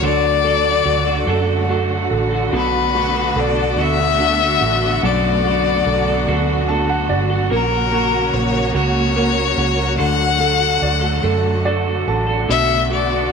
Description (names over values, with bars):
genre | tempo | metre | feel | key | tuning
six-eight pop ballad | 48 BPM (dotted quarters) | 6/8 | straight | B minor | A4 = 440 Hz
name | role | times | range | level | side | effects
clear violin | melody | 0.0-13.3 s | A#4 to F#5 | -18 LUFS | left 9 dB | none
clear concert grand piano | accompaniment | 0.0-13.3 s | F#2 to A5 | -22 LUFS | right 2 dB | none
dark studio string section | sustained chords | 0.0-13.3 s | C#3 to F#4 | -24 LUFS | right 1 dB | none
twelve-string electric guitar | arpeggios | 0.0-13.3 s | B2 to A#4 | -24 LUFS | right 4 dB | spring reverb, tape echo
vintage muted fingered electric bass | bass | 0.0-13.3 s | G1 to F#2 | -22 LUFS | right 2 dB | none
room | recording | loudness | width
moderate echo chamber reverb, RT60 1.9 s, studio ambience | none | -15 LUFS | side -5 dB against mid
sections
0.0-13.3 A section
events
grand piano fill 6.3-7.5, 11.2-12.5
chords
0.0 D; 2.5 Bm7; 7.5 F#/A#; 10.0 D; 12.5 Bm7